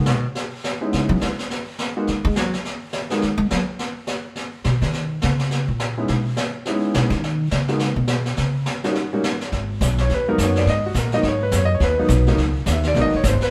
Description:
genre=jazz piano trio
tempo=210 BPM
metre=4/4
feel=swing 59% on 8ths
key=G# minor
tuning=A4 = 437 Hz
part: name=clear concert grand piano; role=melody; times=0.0-3.2, 6.0-13.5 s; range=F#3 to E5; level=-24 LUFS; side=equal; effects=none
part: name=upright bass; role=bass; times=0.0-13.4 s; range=F#1 to G#3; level=-23 LUFS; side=equal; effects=none
part: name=jazz brush drum kit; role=drums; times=0.1-13.5 s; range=brushed snare drum, hi-hat, kick drum, snare drum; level=-28 LUFS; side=equal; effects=none
room=moderate stone room reverb, RT60 1.1 s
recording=band playing live in one room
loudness=-21 LUFS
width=mono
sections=0.0-9.5 A section; 9.5-13.5 A section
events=upright bass solo 0.0-9.5; grand piano solo 9.5-13.5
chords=0.4 C#m7; 1.5 G#m7; 4.9 D#5; 6.1 C#m7; 7.2 G#m (rootless); 8.4 N.C.; 9.5 G#m7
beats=0.07 | 0.36 0.65 0.93 1.22 | 1.51 1.79 2.08 2.37 | 2.65 2.94 3.23 3.51 | 3.80 4.08 4.37 4.66 | 4.94 5.23 5.51 5.80 | 6.09 6.37 6.66 6.95 | 7.23 7.52 7.80 8.09 | 8.38 8.66 8.95 9.23 | 9.52 9.81 10.09 10.38 | 10.67 10.95 11.24 11.53 | 11.81 12.10 12.39 12.67 | 12.96 13.25

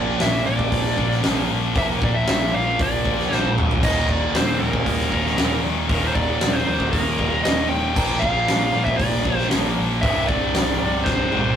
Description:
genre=hard rock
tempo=116 BPM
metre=4/4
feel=straight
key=unclear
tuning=A4 = 441 Hz
part: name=dark smooth lead guitar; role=melody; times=0.0-11.6 s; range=Bb4 to G5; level=-24 LUFS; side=right 1 dB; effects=overdrive
part: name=high-gain distorted guitar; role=riff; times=0.0-11.6 s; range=C2 to Bb3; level=-26 LUFS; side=left 7 dB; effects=distortion
part: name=high-gain distorted guitar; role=riff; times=0.0-11.6 s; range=C2 to Bb3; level=-28 LUFS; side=right 1 dB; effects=distortion
part: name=tight distorted guitar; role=riff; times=0.0-11.6 s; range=C2 to Bb3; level=-30 LUFS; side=right 6 dB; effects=distortion
part: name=overdriven picked electric bass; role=bass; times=0.0-11.5 s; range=C1 to Bb1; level=-27 LUFS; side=equal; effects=none
part: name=huge arena drum kit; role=drums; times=0.2-11.4 s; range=crash cymbal, hi-hat, kick drum, snare drum, splash cymbal, toms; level=-22 LUFS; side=equal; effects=none
room=moderate studio reverb, RT60 0.5 s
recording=rough rehearsal-room recording, tube saturation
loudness=-18 LUFS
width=side -9 dB against mid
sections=0.0-11.6 A section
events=drum fill 3.3-3.8, 11.1-11.6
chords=0.0 Bb; 3.8 Eb5; 8.0 Bb; 10.0 C5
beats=0.21 0.72 1.24 | 1.76 2.27 2.79 3.31 | 3.82 4.34 4.86 5.37 | 5.89 6.41 6.92 7.44 | 7.96 8.47 8.99 9.51 | 10.02 10.54 11.06

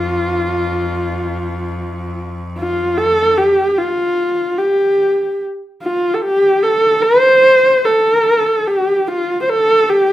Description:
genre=mongolian traditional, Mongolian folk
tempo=74 BPM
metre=4/4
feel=straight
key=F gong mode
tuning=A4 = 442 Hz
part: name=dark horsehead fiddle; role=melody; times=0.0-10.1 s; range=F4 to C5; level=-13 LUFS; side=equal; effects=plate reverb
part: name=bright cello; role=drone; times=0.0-3.5 s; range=F2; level=-24 LUFS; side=left 1 dB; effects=none
room=wet studio reverb, RT60 0.6 s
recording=rough home demo mix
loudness=-12 LUFS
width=side -13 dB against mid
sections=0.0-3.4 A section; 3.4-10.1 B section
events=none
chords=none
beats=| 0.12 0.93 1.74 2.56 | 3.37 4.19 5.00 5.81 | 6.63 7.44 8.26 9.07 | 9.89

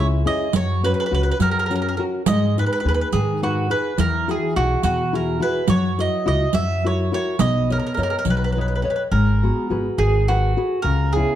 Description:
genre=italian folk, Italian serenade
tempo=70 BPM (dotted quarters)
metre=6/8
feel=straight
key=B major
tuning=A4 = 439 Hz
part: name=mandolin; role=melody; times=0.0-11.4 s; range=F#4 to E5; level=-23 LUFS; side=right 3 dB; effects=none
part: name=nylon-string guitar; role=accompaniment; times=0.0-11.4 s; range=B2 to D#5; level=-23 LUFS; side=left 3 dB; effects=none
part: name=upright bass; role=bass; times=0.0-11.2 s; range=G#1 to G#2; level=-22 LUFS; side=equal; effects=none
part: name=riq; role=percussion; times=0.5-8.5 s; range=none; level=-24 LUFS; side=right 6 dB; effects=none
room=light reverb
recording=dark, warm production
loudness=-18 LUFS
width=side -11 dB against mid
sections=0.0-9.1 A section; 9.1-11.4 B section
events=none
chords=0.0 C#m; 0.5 F#sus4; 1.4 F#; 2.3 G#m; 4.0 Eadd9; 5.7 F#7sus4; 6.5 F#7; 7.4 Badd9; 9.1 G#m7; 10.8 C#m7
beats=| 0.53 1.40 | 2.26 3.12 | 3.98 4.84 | 5.69 6.54 | 7.39 8.26 | 9.12 9.98 | 10.84

